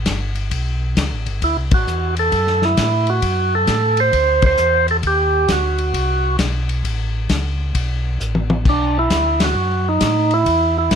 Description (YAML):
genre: soul jazz organ trio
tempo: 133 BPM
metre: 4/4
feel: swing 66% on 8ths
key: unclear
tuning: A4 = 441 Hz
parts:
  - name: mellow tonewheel organ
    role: bass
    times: 0.0-11.0 s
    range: G1 to A2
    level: -20 LUFS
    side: equal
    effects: slow rotary speaker
  - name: warm soul drum kit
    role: drums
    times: 0.1-11.0 s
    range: crash cymbal, hi-hat, kick drum, ride cymbal, snare drum, toms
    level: -22 LUFS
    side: left 2 dB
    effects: none
  - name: percussive tonewheel organ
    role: melody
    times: 1.4-11.0 s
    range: D4 to C5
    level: -17 LUFS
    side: right 2 dB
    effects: slow rotary speaker
room: light reverb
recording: none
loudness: -15 LUFS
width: side -7 dB against mid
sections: 0.0-11.0 A section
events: band accent 1.6, 4.4, 9.3; drum fill 8.2-8.7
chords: 0.0 A9; 1.4 D9; 5.0 Bm; 6.8 Aadd9; 8.7 Bm7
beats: 0.07 0.52 0.97 | 1.42 1.87 2.33 2.78 | 3.23 3.68 4.13 4.58 | 5.04 5.49 5.94 6.39 | 6.84 7.30 7.75 8.20 | 8.65 9.11 9.56 10.01 | 10.46 10.91